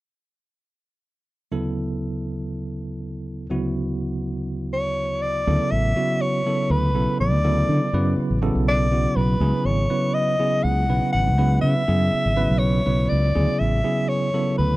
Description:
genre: electric jazz fusion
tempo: 122 BPM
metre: 4/4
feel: straight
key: unclear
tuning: A4 = 442 Hz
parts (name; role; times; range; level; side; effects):
- bell-like tine electric piano; accompaniment; 1.5-14.8 s; D2 to B4; -24 LUFS; right 1 dB; fast stereo tremolo
- breathy soprano saxophone; melody; 4.7-14.8 s; B4 to F#5; -24 LUFS; left 1 dB; tape echo
- mellow fretless electric bass; bass; 5.5-14.8 s; G#1 to D3; -21 LUFS; equal; none
room: light reverb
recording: dry, close 1970s-style studio recording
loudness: -19 LUFS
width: side -18 dB against mid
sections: 1.5-5.5 A section; 5.5-14.8 B section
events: none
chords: 1.5 D69; 9.4 C#m11; 13.4 D69

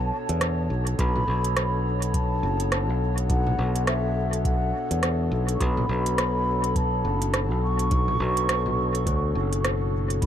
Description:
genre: ambient dub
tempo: 104 BPM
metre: 4/4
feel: swing 59% on 16ths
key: B minor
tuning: A4 = 440 Hz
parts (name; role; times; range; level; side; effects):
- mellow hollow wooden flute; melody; 0.0-10.3 s; E5 to C#6; -29 LUFS; equal; vintage 12-bit sampler grit, dub echo
- warbly tape-like pad; sustained chords; 0.0-10.3 s; B2 to C#5; -30 LUFS; left 3 dB; chorus, built-in reverb
- fingered electric bass; bass; 0.0-10.3 s; F#1 to E2; -25 LUFS; equal; none
- organic electronic drum kit; drums; 0.3-10.3 s; hi-hat, rim click, toms; -30 LUFS; right 2 dB; dub echo
- electronic kick drum; drums; 1.0-10.3 s; none; -27 LUFS; equal; none
room: light reverb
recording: none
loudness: -22 LUFS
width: side -10 dB against mid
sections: 0.0-10.3 A section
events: none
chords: 0.0 Bm9

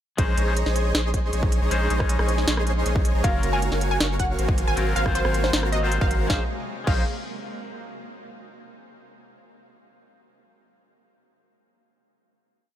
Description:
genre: future bass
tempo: 157 BPM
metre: 4/4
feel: half-time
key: Bb minor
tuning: A4 = 439 Hz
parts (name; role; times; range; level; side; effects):
- twangy electric guitar; accompaniment; 0.2-7.0 s; Gb3 to C5; -32 LUFS; left 4 dB; tremolo, sidechain pumping, dub echo
- shimmering ambient pad; sustained chords; 1.3-6.5 s; C3 to F5; -37 LUFS; right 1 dB; chorus, built-in reverb, vintage 12-bit sampler grit, sidechain pumping
- dense compressed supersaw; riff; 0.2-7.0 s; Gb4 to Db6; -29 LUFS; equal; sidechain pumping, dub echo
- saturated sub bass; bass; 0.2-7.0 s; Gb1 to Bb1; -25 LUFS; equal; sidechain pumping
- electronic kick drum; drums; 0.2-7.0 s; none; -24 LUFS; equal; overdrive
- trap drum kit; drums; 0.2-7.0 s; crash cymbal, hi-hat, rim click, snare drum; -28 LUFS; equal; none
- wide unison pluck; melody; 3.2-7.0 s; C5 to Ab5; -29 LUFS; equal; sidechain pumping, digital delay
room: little or no reverb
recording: none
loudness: -20 LUFS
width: side -11 dB against mid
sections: 0.2-6.3 drop; 6.3-7.8 final chord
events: drop 0.2-6.3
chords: 0.2 Bbm11; 3.2 Gbmaj7; 4.6 Ab13; 6.3 Bbm11

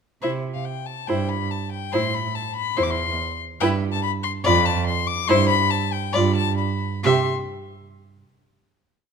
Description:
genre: quick classical-period movement for string quartet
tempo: 141 BPM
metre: 4/4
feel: rubato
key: C major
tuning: A4 = 440 Hz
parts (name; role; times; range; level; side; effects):
- warm violin; melody; 0.2-7.3 s; E5 to D6; -24 LUFS; left 10 dB; none
- warm violin; second line; 0.2-7.3 s; B4 to E5; -26 LUFS; left 5 dB; none
- warm viola; accompaniment; 0.2-7.3 s; E4 to G4; -25 LUFS; right 4 dB; none
- rich cello; bass; 0.2-7.3 s; E2 to C3; -25 LUFS; right 6 dB; none
room: moderate recital hall reverb, RT60 1.6 s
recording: close, detailed microphones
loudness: -20 LUFS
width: side -6 dB against mid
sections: 0.2-7.0 A section; 7.0-8.8 final chord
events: none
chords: 0.2 C; 1.9 Am; 3.6 Em/G; 4.4 Dm/F; 5.3 C/G; 6.1 G7; 7.0 C5

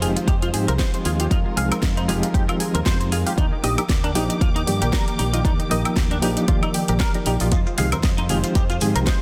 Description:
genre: nu-disco, nu disco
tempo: 116 BPM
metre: 4/4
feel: swing 56% on 16ths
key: F dorian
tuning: A4 = 441 Hz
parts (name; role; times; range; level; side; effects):
- reed electric piano; accompaniment; 0.0-9.2 s; Eb3 to D5; -28 LUFS; equal; fast tremolo, slapback echo
- dark studio string section; sustained chords; 0.0-9.2 s; Eb3 to D6; -34 LUFS; equal; sidechain pumping
- analog pluck; arpeggios; 0.0-9.1 s; D4 to Eb5; -34 LUFS; equal; chorus, sidechain pumping, tape echo
- clean electric guitar; riff; 0.0-9.2 s; D4 to F5; -32 LUFS; equal; analog chorus, slapback echo
- fingered electric bass with an envelope filter; bass; 0.0-9.1 s; F1 to Ab2; -27 LUFS; equal; none
- house drum kit; drums; 0.0-9.2 s; hi-hat, snare drum, woodblock; -30 LUFS; equal; none
- electronic kick drum; drums; 0.3-9.2 s; none; -23 LUFS; equal; none
- maracas and congas; percussion; 7.5-9.2 s; none; -33 LUFS; equal; none
room: light reverb, digital ambience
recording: dense, heavily limited modern master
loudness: -21 LUFS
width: mono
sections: 0.0-9.2 A section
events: none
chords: 0.0 Fm7; 3.4 Ebmaj7; 7.5 Fm7

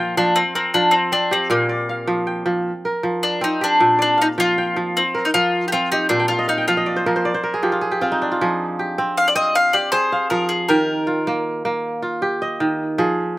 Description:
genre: west african traditional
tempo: 104 BPM (dotted quarters)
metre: 12/8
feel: straight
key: F dorian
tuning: A4 = 443 Hz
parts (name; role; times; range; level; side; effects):
- bowl-back mandolin; melody; 0.0-11.4 s; Bb3 to F5; -18 LUFS; left 1 dB; none
- kora; arpeggios; 0.0-13.4 s; Bb2 to G5; -20 LUFS; right 1 dB; slapback echo
room: little or no reverb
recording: recorded outdoors, with no room sound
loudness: -17 LUFS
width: side -18 dB against mid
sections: 0.0-8.4 A section; 8.4-13.4 B section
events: kora fill 6.2-8.4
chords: 0.4 F5; 1.5 Bb; 2.7 F5; 3.8 Bb; 5.0 F5; 6.1 Bb5; 7.3 F5; 10.7 Eb

